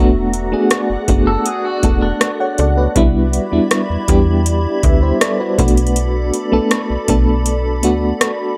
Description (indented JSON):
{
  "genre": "contemporary R&B",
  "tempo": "80 BPM",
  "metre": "4/4",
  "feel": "straight",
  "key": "unclear",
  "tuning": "A4 = 440 Hz",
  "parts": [
    { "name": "FM electric piano with tremolo", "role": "accompaniment", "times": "0.0-8.6 s", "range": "G3 to F#5", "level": "-19 LUFS", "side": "equal", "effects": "none" },
    { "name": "glassy FM pad", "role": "sustained chords", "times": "0.0-8.6 s", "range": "E4 to B5", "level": "-27 LUFS", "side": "equal", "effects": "ensemble chorus, built-in reverb" },
    { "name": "slap-like FM bass", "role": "bass", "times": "0.0-8.1 s", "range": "E1 to E2", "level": "-20 LUFS", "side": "equal", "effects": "none" },
    { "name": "booming analog drum machine", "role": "drums", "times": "0.3-8.4 s", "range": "hi-hat, kick drum, rim click", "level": "-18 LUFS", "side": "equal", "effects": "overdrive" },
    { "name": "clean electric guitar", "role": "arpeggios", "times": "1.3-2.9 s", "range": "D4 to A4", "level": "-26 LUFS", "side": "equal", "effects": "digital delay" }
  ],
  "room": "little or no reverb",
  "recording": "none",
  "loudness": "-15 LUFS",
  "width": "mono",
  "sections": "0.0-3.0 A section; 3.0-8.6 B section",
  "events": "none",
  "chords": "0.0 E9sus4; 3.0 Cmaj9; 5.6 Bm7",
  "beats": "0.71 1.46 2.21 | 2.96 3.71 4.46 5.21 | 5.96 6.71 7.46 8.21"
}